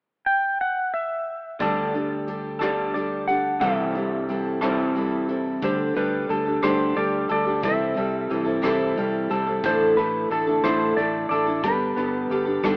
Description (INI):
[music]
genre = folk rock and heartland rock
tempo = 60 BPM (dotted quarters)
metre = 6/8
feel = straight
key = unclear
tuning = A4 = 442 Hz
[part]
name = clean lap steel guitar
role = melody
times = 0.3-12.8 s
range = A4 to G5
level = -28 LUFS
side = equal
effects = none
[part]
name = picked steel-string acoustic guitar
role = accompaniment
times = 1.6-12.8 s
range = A2 to A4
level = -27 LUFS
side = equal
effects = none
[part]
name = electric guitar through a small old amp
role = riff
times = 1.6-12.8 s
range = A2 to A4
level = -30 LUFS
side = equal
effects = none
[part]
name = fingered electric bass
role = bass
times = 1.6-12.8 s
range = G1 to D2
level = -38 LUFS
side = equal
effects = none
[part]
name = soft brush drum kit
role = drums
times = 1.6-12.8 s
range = hi-hat, kick drum, rim click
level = -35 LUFS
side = equal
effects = none
[sound]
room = light reverb, studio reverb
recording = rough home demo mix, AM radio sound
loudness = -24 LUFS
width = mono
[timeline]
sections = 0.0-1.6 A section; 1.6-5.6 B section; 5.6-12.8 C section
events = none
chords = 0.0 N.C.; 1.6 Dsus4; 3.6 C6; 5.6 Dsus4; 7.6 C6; 9.6 Asus4; 11.6 Gadd9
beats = 0.60 | 1.60 2.61 | 3.62 4.62 | 5.63 6.63 | 7.63 8.64 | 9.64 10.64 | 11.64 12.64